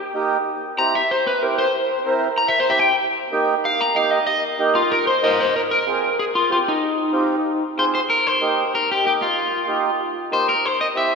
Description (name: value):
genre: latin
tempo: 189 BPM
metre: 4/4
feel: straight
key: F minor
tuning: A4 = 440 Hz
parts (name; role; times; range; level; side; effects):
- electric guitar at the edge of break-up; melody; 0.0-11.2 s; Eb4 to Bb5; -19 LUFS; left 2 dB; spring reverb
- mellow accordion; accompaniment; 0.1-11.2 s; Bb3 to Bb4; -23 LUFS; right 4 dB; none
room: wet church reverb, RT60 3.3 s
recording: recorded in a church or concert hall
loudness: -17 LUFS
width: side -4 dB against mid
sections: 0.0-5.5 A section; 5.5-11.2 B section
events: clean electric guitar solo 0.0-5.5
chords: 0.5 C7; 3.0 Eb; 5.5 Fm; 8.1 Eb; 10.6 C